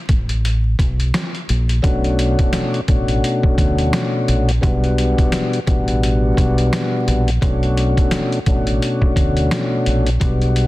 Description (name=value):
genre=hip hop, boom-bap hip-hop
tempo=86 BPM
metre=4/4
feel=swing 57% on 16ths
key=B minor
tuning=A4 = 443 Hz
part: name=deep dub fingered electric bass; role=bass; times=0.1-10.7 s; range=A1 to D2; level=-18 LUFS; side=equal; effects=none
part: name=trip hop sampler-style drum kit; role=drums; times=0.1-10.7 s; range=hi-hat, kick drum, snare drum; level=-19 LUFS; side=equal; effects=none
part: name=mellow tonewheel organ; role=accompaniment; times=1.8-10.7 s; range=B2 to F#4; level=-18 LUFS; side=left 1 dB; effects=slow rotary speaker, cassette tape
room=little or no reverb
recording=dense, heavily limited modern master, vinyl crackle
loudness=-15 LUFS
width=side -18 dB against mid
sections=0.0-10.7 A section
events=break 0.0-1.8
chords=0.0 Asus2; 1.8 Bm7; 4.6 A13sus4; 7.4 Bm7